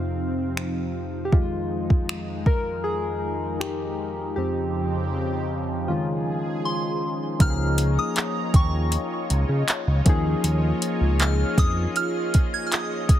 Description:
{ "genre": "contemporary R&B", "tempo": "79 BPM", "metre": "4/4", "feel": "straight", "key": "unclear", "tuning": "A4 = 440 Hz", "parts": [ { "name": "soft electric-piano-like synth keys", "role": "accompaniment", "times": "0.0-13.2 s", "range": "F2 to F5", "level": "-27 LUFS", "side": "left 2 dB", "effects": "chorus" }, { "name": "lush unison pad", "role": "sustained chords", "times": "0.0-13.2 s", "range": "F2 to Bb5", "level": "-30 LUFS", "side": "right 1 dB", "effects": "chorus, phaser" }, { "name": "smooth R&B drum kit", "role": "drums", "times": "0.6-13.2 s", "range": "finger snaps, handclaps, hi-hat, kick drum", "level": "-20 LUFS", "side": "equal", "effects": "soft clipping on snare" }, { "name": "soft synth bell", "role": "melody", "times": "6.7-13.2 s", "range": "C6 to Ab6", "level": "-30 LUFS", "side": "right 1 dB", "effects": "chorus, phaser, tape echo" }, { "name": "fat analog bass", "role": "bass", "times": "7.4-11.9 s", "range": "Db2 to Db3", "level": "-22 LUFS", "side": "equal", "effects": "none" }, { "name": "celesta", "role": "texture", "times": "7.4-10.4 s", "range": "G5 to Bb5", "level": "-42 LUFS", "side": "right 1 dB", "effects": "none" } ], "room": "little or no reverb", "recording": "dense, heavily limited modern master", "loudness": "-21 LUFS", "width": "side -11 dB against mid", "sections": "0.0-7.4 A section; 7.4-13.2 B section", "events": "synth keys solo 0.0-7.4", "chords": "0.0 Cmadd11/F; 1.3 Fm9; 4.4 Dbmaj9#11/F; 5.9 Eb9sus4; 7.4 Db69", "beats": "0.57 | 1.33 2.09 2.85 3.60 | 4.36 5.12 5.88 6.64 | 7.40 8.16 8.92 9.68 | 10.44 11.20 11.96 12.72" }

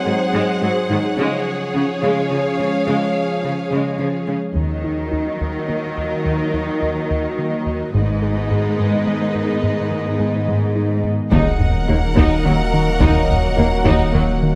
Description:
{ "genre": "cinematic, hybrid orchestral and electronic film score", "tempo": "71 BPM (dotted quarters)", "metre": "6/8", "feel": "straight", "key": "Eb minor", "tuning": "A4 = 440 Hz", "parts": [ { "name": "warm symphonic violin section", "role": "second line", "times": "0.0-14.6 s", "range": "Bb4 to Gb5", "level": "-30 LUFS", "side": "equal", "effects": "none" }, { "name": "clear symphonic viola section", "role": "accompaniment", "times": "0.0-14.2 s", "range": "Db3 to Ab4", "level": "-27 LUFS", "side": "equal", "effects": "none" }, { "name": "dark French horn section", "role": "sustained chords", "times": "0.0-4.2, 11.3-14.6 s", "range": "F3 to Db4", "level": "-28 LUFS", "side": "equal", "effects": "none" }, { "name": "dark analog pad", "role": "sustained chords", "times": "0.0-14.6 s", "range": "Eb3 to Eb5", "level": "-28 LUFS", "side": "equal", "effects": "chorus, phaser" }, { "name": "harp-like synth pluck", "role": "arpeggios", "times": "0.1-14.3 s", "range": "Db3 to Ab4", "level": "-30 LUFS", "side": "equal", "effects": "none" }, { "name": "clear symphonic cello section", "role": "bass", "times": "0.1-14.2 s", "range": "Eb2 to Eb3", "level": "-25 LUFS", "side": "equal", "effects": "none" }, { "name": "plucky analog bass", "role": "riff", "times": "4.6-14.6 s", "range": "Eb2 to Ab3", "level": "-24 LUFS", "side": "equal", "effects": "none" }, { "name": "rich symphonic double bass section", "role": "bass", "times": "4.6-5.1, 7.9-8.5, 11.3-14.2 s", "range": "Ab1 to Eb2", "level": "-25 LUFS", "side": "equal", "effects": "none" }, { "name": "rich studio violin section", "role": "melody", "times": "11.3-14.6 s", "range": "Gb5", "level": "-28 LUFS", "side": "equal", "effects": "none" }, { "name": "saturated sub bass", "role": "bass", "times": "11.3-14.6 s", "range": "Eb1", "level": "-24 LUFS", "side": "equal", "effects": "none" }, { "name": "taiko ensemble", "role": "drums", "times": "11.3-14.4 s", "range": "none", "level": "-24 LUFS", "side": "equal", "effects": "none" } ], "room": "light reverb", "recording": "none", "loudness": "-19 LUFS", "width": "mono", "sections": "0.0-4.6 A section; 4.6-11.3 B section; 11.3-14.6 C section", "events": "none", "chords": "0.0 Ab7; 1.2 Db; 4.6 Ebm; 7.9 Abm; 11.3 Ebm", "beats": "0.33 | 1.18 2.02 | 2.87 3.71 | 4.56 5.40 | 6.25 7.09 | 7.94 8.78 | 9.63 10.47 | 11.32 12.16 | 13.01 13.85" }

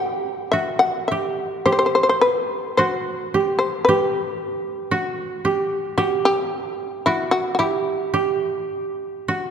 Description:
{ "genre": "japanese traditional, Japanese chamber music", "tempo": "56 BPM", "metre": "2/4", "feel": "uneven beats, rubato", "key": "unclear", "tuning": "A4 = 440 Hz", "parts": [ { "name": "shamisen", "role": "melody", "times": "0.0-9.5 s", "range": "E4 to F#5", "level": "-20 LUFS", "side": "left 2 dB", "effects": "none" }, { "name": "koto", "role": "second line", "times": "0.0-9.5 s", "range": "F#4 to G4", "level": "-22 LUFS", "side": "right 3 dB", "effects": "none" } ], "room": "wet church reverb, RT60 2.9 s", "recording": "dark, warm production", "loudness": "-19 LUFS", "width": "side -7 dB against mid", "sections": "0.0-9.5 A section", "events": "none", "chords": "none", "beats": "0.53 | 1.66 2.79 | 3.87 4.92 | 5.98 7.05 | 8.13 9.28" }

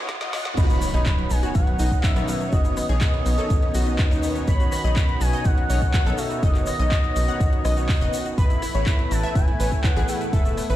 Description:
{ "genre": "progressive house", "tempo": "123 BPM", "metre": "4/4", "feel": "straight", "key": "B mixolydian", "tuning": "A4 = 440 Hz", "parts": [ { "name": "warm analog pad", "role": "sustained chords", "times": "0.0-10.8 s", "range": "B2 to D#5", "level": "-33 LUFS", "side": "equal", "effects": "chorus, sidechain pumping" }, { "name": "analog pluck", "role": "arpeggios", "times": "0.0-10.8 s", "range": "F#3 to F#5", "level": "-30 LUFS", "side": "left 2 dB", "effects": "chorus, sidechain pumping, digital delay" }, { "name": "soft supersaw", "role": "stabs", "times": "0.0-10.8 s", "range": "A2 to F#5", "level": "-31 LUFS", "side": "equal", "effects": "sidechain pumping, digital delay" }, { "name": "riser and impact", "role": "sound effects", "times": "0.0-2.5 s", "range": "none", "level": "-31 LUFS", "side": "equal", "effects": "none" }, { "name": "drifting glass-harmonics texture", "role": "texture", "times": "0.0-0.6 s", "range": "none", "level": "barely audible", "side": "none", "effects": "none" }, { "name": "deep house drum kit", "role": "drums", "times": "0.1-10.8 s", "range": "crash cymbal, handclaps, hi-hat, rim click, snare drum", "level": "-32 LUFS", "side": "equal", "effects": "none" }, { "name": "electronic kick drum", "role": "drums", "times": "0.1-10.4 s", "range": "none", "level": "-21 LUFS", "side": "equal", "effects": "none" }, { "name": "expressive synth lead", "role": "melody", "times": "0.6-10.8 s", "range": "D#5 to B5", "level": "-29 LUFS", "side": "equal", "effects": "analog chorus, tape echo" }, { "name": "tight sequencer bass", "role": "bass", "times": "0.6-10.8 s", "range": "E1 to D#2", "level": "-24 LUFS", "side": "equal", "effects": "sidechain pumping" }, { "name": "egg shaker", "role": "percussion", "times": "0.6-10.8 s", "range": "none", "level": "-40 LUFS", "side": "left 3 dB", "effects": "none" } ], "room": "digital ambience", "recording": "played on a big sound system in a bare room, stone room reverb, high-pass filter", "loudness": "-19 LUFS", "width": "side -14 dB against mid", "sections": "0.6-10.8 A section", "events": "drum fill 0.0-0.6; riser 0.0-0.6; drop 0.6-10.8; impact 0.6-2.5", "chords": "0.0 Badd9; 8.4 Asus2", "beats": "0.09 | 0.57 1.06 1.55 2.04 | 2.53 3.01 3.50 3.99 | 4.48 4.96 5.45 5.94 | 6.43 6.92 7.40 7.89 | 8.38 8.87 9.36 9.84 | 10.33" }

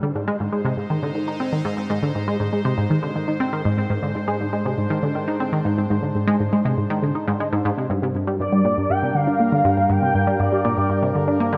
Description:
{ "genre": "ambient, sequencer-driven space music", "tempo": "120 BPM", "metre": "4/4", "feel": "straight", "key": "unclear", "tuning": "A4 = 440 Hz", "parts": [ { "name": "sweeping resonant pad", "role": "sustained chords", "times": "0.0-11.6 s", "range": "G2 to C5", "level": "-29 LUFS", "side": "equal", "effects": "chorus" }, { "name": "tight sequenced synth", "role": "riff", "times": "0.0-11.6 s", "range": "G2 to Eb4", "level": "-23 LUFS", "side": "equal", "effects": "chorus, delay" }, { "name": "expressive synth lead", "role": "melody", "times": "8.4-11.4 s", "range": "D5 to G5", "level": "-24 LUFS", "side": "equal", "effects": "ensemble chorus, delay" } ], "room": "wet plate reverb, RT60 3.1 s", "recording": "echo-heavy mix", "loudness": "-21 LUFS", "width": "mono", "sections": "0.0-11.6 A section", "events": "fade-in on analog synth pad 0.0-11.6", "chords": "0.0 Ab; 7.9 Gm", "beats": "0.40 0.90 1.40 | 1.90 2.40 2.90 3.40 | 3.90 4.40 4.90 5.40 | 5.90 6.40 6.90 7.40 | 7.90 8.40 8.90 9.40 | 9.90 10.40 10.90 11.40" }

